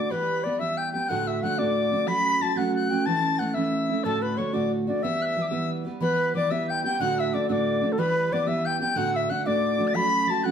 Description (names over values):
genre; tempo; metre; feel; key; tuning
celtic folk, Celtic jig; 122 BPM (dotted quarters); 6/8; straight; E dorian; A4 = 439 Hz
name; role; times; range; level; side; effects
bright reedy baroque flute; melody; 0.0-10.5 s; A4 to B5; -26 LUFS; left 1 dB; none
reedy tin whistle; second line; 0.0-10.5 s; A5 to B6; -31 LUFS; left 5 dB; none
picked steel-string acoustic guitar; accompaniment; 0.0-10.5 s; D2 to G4; -26 LUFS; right 2 dB; none
room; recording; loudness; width
wet studio reverb, RT60 0.9 s; heard from further back in the room; -22 LUFS; side -8 dB against mid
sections
0.0-6.0 A section; 6.0-10.5 A section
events
none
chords
0.1 Em; 1.1 D; 2.1 F#m; 3.1 A/E; 4.0 D; 5.0 Em; 7.0 D; 8.0 Em; 9.0 D; 9.9 F#m